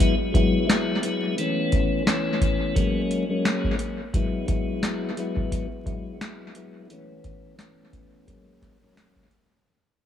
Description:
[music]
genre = hip hop, boom-bap hip-hop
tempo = 87 BPM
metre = 4/4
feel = swing 56% on 16ths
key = F# minor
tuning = A4 = 440 Hz
[part]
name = tonewheel organ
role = accompaniment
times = 0.0-9.3 s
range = E3 to E4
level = -25 LUFS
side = left 2 dB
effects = slow rotary speaker, cassette tape, high-pass filter, low-pass filter, analog delay
[part]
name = booming analog drum machine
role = drums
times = 0.0-9.5 s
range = hi-hat, kick drum, snare drum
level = -25 LUFS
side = equal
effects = analog delay
[sound]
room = light reverb, digital ambience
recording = echo-heavy mix, vinyl crackle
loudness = -22 LUFS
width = side -10 dB against mid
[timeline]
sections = 0.0-9.7 A section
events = fade-out 0.0-9.7; filter sweep on tonewheel organ 0.0-9.7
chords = 0.0 F#9sus4; 1.4 B9sus4; 2.8 G#9sus4; 4.1 F#9sus4; 6.9 B9sus4; 8.3 G#9sus4

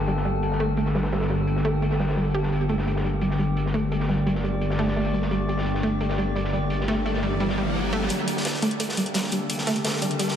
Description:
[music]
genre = dark technical drum and bass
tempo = 172 BPM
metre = 4/4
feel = straight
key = G minor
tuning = A4 = 440 Hz
[part]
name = metallic inharmonic drone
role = sustained chords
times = 0.0-10.4 s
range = D3 to D5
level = -26 LUFS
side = left 1 dB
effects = chorus, built-in reverb, phaser
[part]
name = wide detuned saw bass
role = bass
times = 0.0-8.1 s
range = G1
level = -28 LUFS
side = equal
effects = chorus, tube saturation
[part]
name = analog pluck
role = arpeggios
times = 0.1-10.3 s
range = G3 to G4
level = -27 LUFS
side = right 1 dB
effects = chorus, diffuse ambient delay
[part]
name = crunchy breakbeat drum kit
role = drums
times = 0.1-10.4 s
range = hi-hat, snare drum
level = -34 LUFS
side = equal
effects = high-pass filter on hats, low-pass filter on hats, high-pass filter on snare, low-pass filter on snare, high-pass filter on room, low-pass filter on room
[part]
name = riser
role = sound effects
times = 6.7-10.4 s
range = none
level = -32 LUFS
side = equal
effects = none
[part]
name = electronic hi-hat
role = drums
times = 8.1-10.3 s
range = none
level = -33 LUFS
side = left 1 dB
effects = none
[sound]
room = moderate huge ambient reverb, RT60 8.4 s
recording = dreamy mix soaked in reverb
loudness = -22 LUFS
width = side -9 dB against mid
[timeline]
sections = 0.0-8.1 A section; 8.1-10.4 B section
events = filter sweep on synth arpeggio sound 0.0-8.1, 8.1-10.4; riser 6.7-8.1, 8.1-10.4; build-up 8.1-10.4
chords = 0.0 Gmadd9

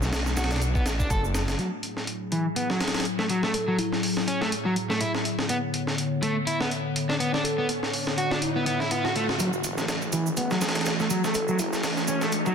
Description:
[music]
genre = breakbeat, breaks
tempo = 123 BPM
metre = 4/4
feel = swing 56% on 16ths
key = F# minor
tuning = A4 = 440 Hz
[part]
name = warbly tape-like pad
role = sustained chords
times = 0.0-12.5 s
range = A2 to C#5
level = -30 LUFS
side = left 1 dB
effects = chorus, built-in reverb, sidechain pumping
[part]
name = detuned saw bass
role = bass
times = 0.0-1.6, 9.4-12.5 s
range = E1 to B1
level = -30 LUFS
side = equal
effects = high-pass filter
[part]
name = breakbeat sampler-style drum kit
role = drums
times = 0.0-12.5 s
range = hi-hat, kick drum, snare drum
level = -29 LUFS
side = equal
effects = high-pass filter on kick, high-pass filter on hats, high-pass filter on snare
[part]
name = shaker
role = drums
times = 0.0-1.6, 9.4-12.5 s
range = none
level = -37 LUFS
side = right 6 dB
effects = overdrive, high-pass filter on perc, high-pass filter on room
[part]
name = overdriven semi-hollow guitar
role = riff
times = 0.4-12.5 s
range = E3 to A4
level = -28 LUFS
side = equal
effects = low-pass filter, ping-pong delay
[part]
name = bell-like FM electric piano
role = melody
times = 3.5-4.0, 7.4-11.8 s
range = E4 to A4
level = -32 LUFS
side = equal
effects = chorus, old record sound, low-pass filter, ping-pong delay
[part]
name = riser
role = sound effects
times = 6.9-12.5 s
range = none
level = -36 LUFS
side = equal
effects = none
[sound]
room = moderate plate reverb, RT60 1.8 s, digital ambience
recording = dense, heavily limited modern master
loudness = -24 LUFS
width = side -6 dB against mid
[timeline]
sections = 0.0-1.6 A section; 1.6-9.4 B section; 9.4-12.5 C section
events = filter sweep on overdriven electric guitar 1.6-9.4, 9.4-12.5; riser 6.9-9.4; build-up 9.4-12.5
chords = 0.0 Bm7; 1.6 F#m9; 5.3 Bm9; 9.4 F#m9

